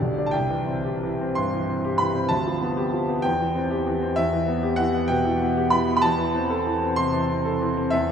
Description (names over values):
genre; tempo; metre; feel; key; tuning
classical, romantic character piece for solo piano; 63 BPM (dotted quarters); 6/8; uneven beats, rubato; unclear; A4 = 442 Hz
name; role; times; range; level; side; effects
clear grand piano; solo; 0.0-8.1 s; B1 to C6; -21 LUFS; equal; none
room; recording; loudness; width
wet cathedral reverb, RT60 5.7 s; in a vast, echoing space; -21 LUFS; side -7 dB against mid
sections
0.0-8.1 A section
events
none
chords
0.3 C; 2.3 G7/D; 3.2 C/E; 4.2 Em; 6.0 Am/E